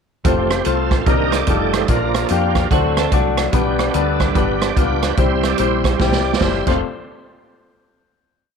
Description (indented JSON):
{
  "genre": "uptempo gospel",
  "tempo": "146 BPM",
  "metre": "4/4",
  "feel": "swing 63% on 8ths",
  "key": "F major",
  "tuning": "A4 = 440 Hz",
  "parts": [
    { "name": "bright upright piano", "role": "accompaniment", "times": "0.2-6.8 s", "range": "F2 to D5", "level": "-20 LUFS", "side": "left 12 dB", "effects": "none" },
    { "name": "bright tonewheel organ", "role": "sustained chords", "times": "0.2-6.8 s", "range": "Eb3 to E5", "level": "-22 LUFS", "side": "right 10 dB", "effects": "slow rotary speaker, overdrive, chorus vibrato" },
    { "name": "deep dub fingered electric bass", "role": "bass", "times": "0.2-6.8 s", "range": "F1 to F2", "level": "-22 LUFS", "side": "equal", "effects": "none" },
    { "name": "swinging big-band drum kit", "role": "drums", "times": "0.2-6.7 s", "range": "crash cymbal, hi-hat, kick drum, rim click, snare drum", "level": "-19 LUFS", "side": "right 3 dB", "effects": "none" },
    { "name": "clean electric guitar", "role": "second line", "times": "2.7-3.5 s", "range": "F#3 to A4", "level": "-25 LUFS", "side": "right 10 dB", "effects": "ensemble chorus" }
  ],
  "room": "moderate spring reverb, RT60 2.0 s, small room ambience",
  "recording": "1960s-style stereo with parts hard left and right",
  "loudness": "-15 LUFS",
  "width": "side -6 dB against mid",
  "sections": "0.2-6.8 breakdown; 6.8-8.5 final hit",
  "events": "tonewheel organ solo 0.2-6.8; drum fill 6.0-6.8",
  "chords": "0.2 F; 1.1 Cm7; 1.5 F9; 1.9 Bb; 2.7 D7; 3.5 G/B; 5.2 C; 6.6 F; 6.8 N.C."
}